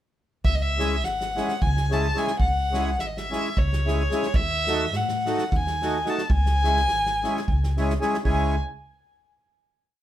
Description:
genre	balkan folk, Balkan wedding band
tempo	216 BPM (eighths)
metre	7/8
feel	straight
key	C# minor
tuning	A4 = 440 Hz
part	dark violin	melody	0.4-8.6 s	C#5 to A5	-26 LUFS	equal	plate reverb
part	natural country drum kit	percussion	0.4-8.6 s	kick drum, snare drum	-28 LUFS	right 1 dB	none
part	upright bass	bass	0.5-8.6 s	G#1 to A2	-26 LUFS	equal	none
part	accordion	accompaniment	0.8-8.6 s	G#3 to A4	-27 LUFS	equal	none
room	wet small room ambience, RT60 0.5 s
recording	heard from further back in the room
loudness	-21 LUFS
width	side -12 dB against mid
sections	0.5-8.2 A section; 8.2-10.0 final chord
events	none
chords	0.5 C#m; 4.4 D#dim; 6.3 C#m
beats	| 0.45 0.73 1.01 1.29 1.56 1.84 2.12 | 2.40 2.68 2.96 3.24 3.52 3.80 4.08 | 4.35 4.63 4.91 5.19 5.47 5.75 6.03 | 6.30 6.58 6.86 7.14 7.42 7.69 7.97 | 8.25 8.53

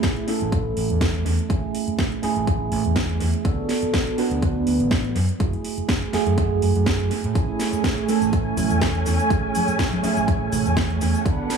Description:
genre	filtered disco house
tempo	123 BPM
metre	4/4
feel	swing 54% on 16ths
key	A major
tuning	A4 = 440 Hz
part	mellow tine electric piano	accompaniment	0.0-11.6 s	A3 to B4	-24 LUFS	right 4 dB	slow stereo tremolo, phaser, sidechain pumping, low-pass filter, analog delay
part	overdriven fingered electric bass	bass	0.0-11.4 s	F#1 to A2	-25 LUFS	equal	sidechain pumping, low-pass filter
part	electronic kick drum	drums	0.0-11.4 s	none	-23 LUFS	equal	none
part	house drum kit	drums	0.0-11.6 s	cabasa, hi-hat, snare drum	-28 LUFS	right 1 dB	sidechain pumping on hats, sidechain pumping on perc, analog delay
part	muted studio string section	sustained chords	7.3-11.6 s	A3 to G#5	-26 LUFS	right 1 dB	sidechain pumping, low-pass filter
part	tambourine and congas	percussion	7.4-11.6 s	none	-31 LUFS	left 2 dB	none
room	light reverb, digital ambience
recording	echo-heavy mix, small room ambience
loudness	-19 LUFS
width	side -6 dB against mid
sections	0.0-11.6 A section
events	filter sweep 0.0-11.6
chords	0.0 Amaj7; 3.5 D6; 5.2 F#m9; 7.4 Amaj7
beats	0.04 0.52 1.01 | 1.50 1.99 2.48 2.96 | 3.45 3.94 4.43 4.92 | 5.40 5.89 6.38 6.87 | 7.35 7.84 8.33 8.82 | 9.30 9.79 10.28 10.77 | 11.26

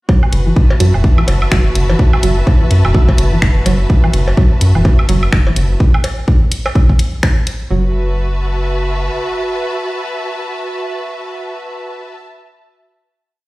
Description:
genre	minimal techno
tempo	126 BPM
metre	4/4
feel	swing 59% on 16ths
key	F# minor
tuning	A4 = 440 Hz
part	string-like resonator pluck	riff	0.1-7.9 s	E3 to F#3	-21 LUFS	right 2 dB	chorus, sidechain pumping, tape echo
part	electronic kick drum	drums	0.1-7.3 s	none	-11 LUFS	equal	none
part	cowbell and woodblock	percussion	0.1-7.3 s	none	-24 LUFS	right 2 dB	tape echo
part	rich studio string section	texture	0.1-12.2 s	F#4 to A5	-22 LUFS	equal	sidechain pumping
part	rubbery square bass	bass	0.3-9.1 s	E1 to F#2	-14 LUFS	equal	sidechain pumping
part	house drum kit	drums	0.3-7.6 s	finger snaps, hi-hat	-21 LUFS	left 1 dB	none
room	digital ambience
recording	played on a big sound system in a bare room, stone room reverb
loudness	-11 LUFS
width	side -20 dB against mid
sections	0.1-7.7 groove; 7.7-11.5 final chord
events	filter sweep on synth pluck 0.1-5.8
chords	0.1 F#m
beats	| 0.09 0.56 1.04 1.52 | 1.99 2.47 2.94 3.42 | 3.90 4.37 4.85 5.33 | 5.80 6.28 6.75 7.23 | 7.71 8.18 8.66 9.13 | 9.61 10.09 10.56 11.04

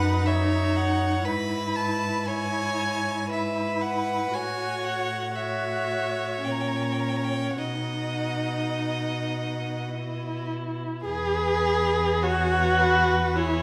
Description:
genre	classical, slow romantic movement for string quartet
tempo	50-61 BPM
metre	3/4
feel	rubato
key	E major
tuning	A4 = 440 Hz
part	clear violin	melody	0.0-13.6 s	G#4 to B5	-34 LUFS	equal	none
part	clear violin	second line	0.0-13.6 s	B4 to D#5	-33 LUFS	equal	none
part	rich viola	accompaniment	0.0-13.6 s	C#4 to G#4	-30 LUFS	equal	none
part	rich cello	bass	0.0-13.6 s	E2 to B2	-32 LUFS	equal	none
room	wet recital hall reverb, RT60 1.5 s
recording	recorded in a church or concert hall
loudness	-26 LUFS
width	mono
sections	0.0-11.1 A section; 11.1-13.6 B section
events	none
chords	0.0 B/F#; 1.3 E/G#; 4.3 F#m7/A; 6.4 A#m6; 7.6 B; 11.1 E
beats	0.28 | 1.27 2.29 3.31 | 4.33 5.36 6.45 | 7.59 8.78 9.93 | 11.06 12.23 13.36

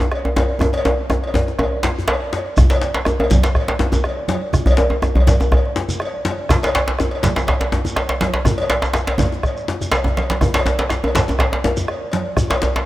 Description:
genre	west african traditional, West African drum ensemble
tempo	122 BPM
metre	4/4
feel	straight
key	none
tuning	none
part	djembe	percussion	0.0-12.7 s	none	-24 LUFS	left 3 dB	none
part	djembe	percussion	0.0-12.9 s	none	-18 LUFS	equal	none
part	bombo	percussion	0.1-12.7 s	none	-24 LUFS	equal	none
part	cowbell	percussion	0.1-12.6 s	none	-25 LUFS	equal	none
part	congas	percussion	2.6-12.5 s	none	-26 LUFS	right 4 dB	none
part	shekere	percussion	2.6-12.7 s	none	-29 LUFS	right 1 dB	none
room	light reverb, small room reverb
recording	rough home demo mix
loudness	-16 LUFS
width	side -16 dB against mid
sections	0.0-2.6 A section; 2.6-12.9 B section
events	drum fill 0.6-2.6, 9.8-10.4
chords	none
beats	0.12 | 0.61 1.10 1.59 2.08 | 2.57 3.06 3.55 4.04 | 4.53 5.02 5.51 6.00 | 6.49 6.98 7.47 7.96 | 8.45 8.94 9.43 9.92 | 10.41 10.90 11.39 11.88 | 12.37

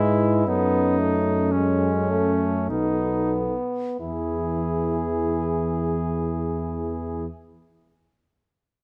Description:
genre	classical, hymn-like piece for brass band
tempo	44-62 BPM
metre	3/4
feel	rubato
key	E major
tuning	A4 = 439 Hz
part	clear cornet	melody	0.0-7.3 s	C#4 to G#4	-32 LUFS	equal	none
part	mellow French horn section	second line	0.0-7.3 s	G#4 to B4	-32 LUFS	equal	none
part	clear trombone	accompaniment	0.0-7.3 s	G#3 to E4	-30 LUFS	equal	none
part	mellow euphonium	accompaniment	0.0-7.3 s	E3 to E4	-32 LUFS	equal	none
part	mellow tuba	bass	0.0-7.3 s	B1 to G#2	-28 LUFS	equal	none
room	moderate stone room reverb, RT60 1.4 s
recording	none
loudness	-24 LUFS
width	mono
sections	0.0-4.0 A section; 4.0-7.9 B section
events	slowing down 0.0-4.0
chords	0.5 F#m; 2.7 B7; 4.0 E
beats	| 0.47 1.53 2.69 | 4.00 5.32 6.63

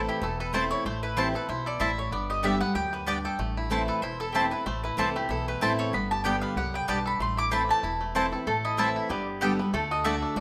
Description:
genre	bluegrass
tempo	189 BPM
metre	4/4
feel	swing 55% on 8ths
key	A dorian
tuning	A4 = 440 Hz
part	mandolin	melody	0.0-10.4 s	G4 to D6	-33 LUFS	equal	none
part	picked steel-string acoustic guitar	accompaniment	0.0-10.4 s	E2 to G4	-34 LUFS	equal	none
part	bluegrass banjo	arpeggios	0.0-10.4 s	E3 to A4	-38 LUFS	equal	none
part	upright bass	bass	0.0-10.4 s	E1 to D2	-38 LUFS	equal	none
part	mandolin	stabs	0.5-10.2 s	A3 to A5	-32 LUFS	equal	none
part	lap resonator guitar	second line	8.5-10.4 s	G4 to A4	-34 LUFS	equal	none
room	light reverb, small room ambience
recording	rough home demo mix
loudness	-28 LUFS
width	mono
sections	0.0-8.5 A section; 8.5-10.4 B section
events	none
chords	0.0 Am; 2.1 G; 3.4 Am; 5.9 G; 7.2 Am; 9.1 G; 9.7 D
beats	0.22 0.54 | 0.85 1.17 1.49 1.81 | 2.12 2.44 2.76 3.08 | 3.40 3.71 4.03 4.35 | 4.67 4.98 5.30 5.62 | 5.94 6.25 6.57 6.89 | 7.20 7.52 7.84 8.15 | 8.47 8.79 9.10 9.42 | 9.73 10.05 10.37

